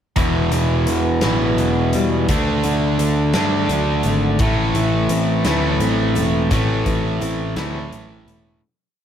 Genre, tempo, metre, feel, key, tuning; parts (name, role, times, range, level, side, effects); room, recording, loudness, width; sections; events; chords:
quiet-loud alternative rock; 57 BPM (dotted quarters); 6/8; straight; A minor; A4 = 440 Hz
picked steel-string acoustic guitar; arpeggios; 0.2-8.6 s; E2 to F#4; -25 LUFS; left 2 dB; slapback echo
cranked stack guitar; riff; 0.2-8.6 s; E2 to D4; -20 LUFS; right 1 dB; overdrive
fuzz picked electric bass; bass; 0.2-8.6 s; E1 to G2; -21 LUFS; equal; overdrive
big rock drum kit; drums; 0.2-8.4 s; hi-hat, kick drum, snare drum; -25 LUFS; equal
little or no reverb; -16 LUFS; side -9 dB against mid
0.2-8.6 verse
fade-out 6.5-8.6
0.2 Em; 2.3 D; 4.4 Am